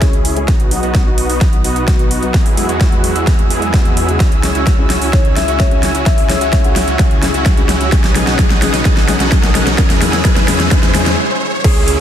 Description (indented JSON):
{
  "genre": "EDM, festival progressive house",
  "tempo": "129 BPM",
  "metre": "4/4",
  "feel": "straight",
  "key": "unclear",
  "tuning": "A4 = 439 Hz",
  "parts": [
    { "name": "felt-muted upright piano", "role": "accompaniment", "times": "0.0-11.2 s", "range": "B2 to G#4", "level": "-22 LUFS", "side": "left 4 dB", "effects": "sidechain pumping, digital delay" },
    { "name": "lush unison pad", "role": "sustained chords", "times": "0.0-12.0 s", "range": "G#4 to E6", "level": "-23 LUFS", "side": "right 1 dB", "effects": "chorus, sidechain pumping" },
    { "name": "supersaw chords", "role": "riff", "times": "0.0-12.0 s", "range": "F#3 to G#4", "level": "-20 LUFS", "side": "right 2 dB", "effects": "sidechain pumping, low-pass filter, digital delay" },
    { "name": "wide detuned saw bass", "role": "bass", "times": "0.0-12.0 s", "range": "B1 to E2", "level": "-21 LUFS", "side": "equal", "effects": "chorus, sidechain pumping" },
    { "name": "big-room dance drum kit", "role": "drums", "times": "0.0-12.0 s", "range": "crash cymbal, hi-hat, snare drum", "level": "-18 LUFS", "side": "left 1 dB", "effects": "overdrive" },
    { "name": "electronic kick drum", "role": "drums", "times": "0.0-11.7 s", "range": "none", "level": "-12 LUFS", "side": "equal", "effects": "overdrive" },
    { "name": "riser and downlifter", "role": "sound effects", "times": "3.5-12.0 s", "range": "none", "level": "-25 LUFS", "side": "right 1 dB", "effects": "none" },
    { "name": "kalimba", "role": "melody", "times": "5.1-7.0 s", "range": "C#5 to F#5", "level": "-22 LUFS", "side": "left 5 dB", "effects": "digital delay" },
    { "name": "warm baby grand piano", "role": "arpeggios", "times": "11.6-12.0 s", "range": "G#4", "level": "-18 LUFS", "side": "right 4 dB", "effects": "vintage 12-bit sampler grit, sidechain pumping" }
  ],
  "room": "moderate scoring stage reverb, RT60 1.9 s, digital ambience",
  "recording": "dense, heavily limited modern master",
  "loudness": "-10 LUFS",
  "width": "side -10 dB against mid",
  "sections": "0.0-11.6 A section",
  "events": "build-up 0.0-11.6; drum fill 0.0-11.2; filter sweep on supersaw synth 0.0-11.6; filter sweep on analog synth pad 0.0-11.6; riser 3.5-11.6; break 11.2-11.6",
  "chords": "0.5 B; 2.3 Eadd9; 4.2 C#m; 7.9 B; 9.8 Eadd9",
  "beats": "0.02 | 0.48 0.95 1.41 1.88 | 2.34 2.81 3.27 3.74 | 4.20 4.67 5.13 5.60 | 6.06 6.53 6.99 7.46 | 7.92 8.39 8.85 9.32 | 9.78 10.25 10.71 11.18 | 11.64"
}